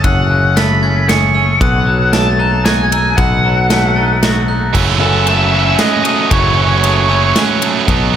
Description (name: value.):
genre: post-rock.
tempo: 115 BPM.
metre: 3/4.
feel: straight.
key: F# dorian.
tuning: A4 = 440 Hz.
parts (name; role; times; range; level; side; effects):
octave-fuzz lead guitar; melody; 0.0-8.2 s; A4 to C#6; -16 LUFS; equal; distortion, analog delay.
glockenspiel with hard plastic mallets; arpeggios; 0.0-8.2 s; D#6 to B6; -25 LUFS; right 2 dB; analog delay.
twangy electric guitar; arpeggios; 0.0-8.2 s; F#2 to G#4; -21 LUFS; left 1 dB; harmonic tremolo, analog delay.
picked electric bass; bass; 0.0-8.2 s; F#1 to B1; -15 LUFS; equal; none.
big rock drum kit; drums; 0.0-8.0 s; crash cymbal, kick drum, ride cymbal, snare drum; -17 LUFS; equal; none.
tight distorted guitar; riff; 4.7-8.2 s; F#2 to D#4; -15 LUFS; right 8 dB; distortion.
room: light reverb, studio reverb.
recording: none.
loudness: -10 LUFS.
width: side -9 dB against mid.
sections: 0.0-4.7 A section; 4.7-8.2 B section.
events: none.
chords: 0.0 F#m9; 1.6 B7; 4.7 F#m9.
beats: | 0.04 0.56 1.09 | 1.61 2.13 2.65 | 3.18 3.70 4.22 | 4.74 5.27 5.79 | 6.31 6.83 7.36 | 7.88.